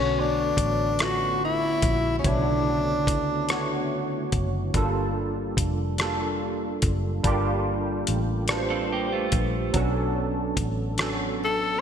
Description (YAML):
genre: slow six-eight R&B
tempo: 48 BPM (dotted quarters)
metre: 6/8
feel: straight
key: B minor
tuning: A4 = 440 Hz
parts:
  - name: breathy tenor saxophone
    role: melody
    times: 0.0-3.9, 11.4-11.8 s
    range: C#4 to A4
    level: -25 LUFS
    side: left 3 dB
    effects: ping-pong delay
  - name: barky tine electric piano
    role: accompaniment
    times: 0.0-11.8 s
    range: C#3 to C#5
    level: -27 LUFS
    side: right 2 dB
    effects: overdrive, ensemble chorus
  - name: vintage muted fingered electric bass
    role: bass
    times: 0.0-11.8 s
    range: F1 to C#2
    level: -29 LUFS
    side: equal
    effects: none
  - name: dusty soul sampler-style drum kit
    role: drums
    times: 0.6-11.2 s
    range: hi-hat, kick drum, rim click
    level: -28 LUFS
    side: left 1 dB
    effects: none
  - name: electric guitar at the edge of break-up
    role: second line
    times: 8.7-9.7 s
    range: A3 to A4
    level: -32 LUFS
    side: right 4 dB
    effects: lush chorus
room: moderate lush hall reverb, RT60 2.5 s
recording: bright 1980s-style digital production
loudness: -23 LUFS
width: side -8 dB against mid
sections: 0.0-11.8 A section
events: none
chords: 0.0 Bm9; 4.7 Gm9; 9.7 Bm9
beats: 0.99 | 2.25 3.50 | 4.75 6.00 | 7.25 8.49 | 9.74 10.99